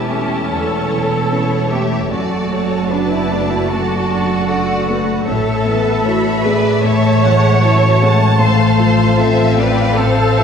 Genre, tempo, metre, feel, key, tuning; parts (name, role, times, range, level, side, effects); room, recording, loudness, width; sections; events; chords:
cinematic, emotional film score for orchestra; 76 BPM; 4/4; rubato; A major; A4 = 440 Hz
warm symphonic violin section; melody; 0.0-10.4 s; A4 to F#5; -25 LUFS; left 5 dB
rich symphonic violin section; second line; 0.0-10.4 s; C#5 to C6; -22 LUFS; left 1 dB
rich studio viola section; accompaniment; 0.0-10.4 s; F#3 to C#5; -20 LUFS; left 1 dB
warm grand piano; accompaniment; 0.0-10.4 s; E2 to F4; -18 LUFS; left 1 dB
rich symphonic cello section; bass; 0.0-10.4 s; D4 to C#5; -19 LUFS; right 2 dB
rich symphonic double bass section; bass; 0.0-10.4 s; E1 to A1; -19 LUFS; right 1 dB
wet scoring stage reverb, RT60 1.5 s; heard from further back in the room; -12 LUFS; side -7 dB against mid
0.0-10.4 A section
0.0 A7/E; 2.1 D/F#; 5.3 A; 8.4 F/A